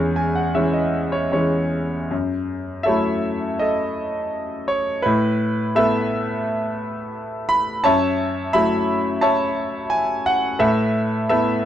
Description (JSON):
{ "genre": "classical, lyrical solo piano", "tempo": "73-89 BPM", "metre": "4/4", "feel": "rubato", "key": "F# dorian", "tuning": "A4 = 439 Hz", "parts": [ { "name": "bright concert grand piano", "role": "solo", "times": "0.0-11.7 s", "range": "E2 to B5", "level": "-18 LUFS", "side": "equal", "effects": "none" } ], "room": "moderate studio reverb, RT60 0.7 s", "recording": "dark, warm production", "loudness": "-18 LUFS", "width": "side -10 dB against mid", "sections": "0.0-2.1 A section; 2.1-11.7 B section", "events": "grand piano fill 0.0-2.1", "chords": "0.0 E6; 2.1 F#m7; 5.1 Asus2; 7.9 F#m7; 10.6 Asus2" }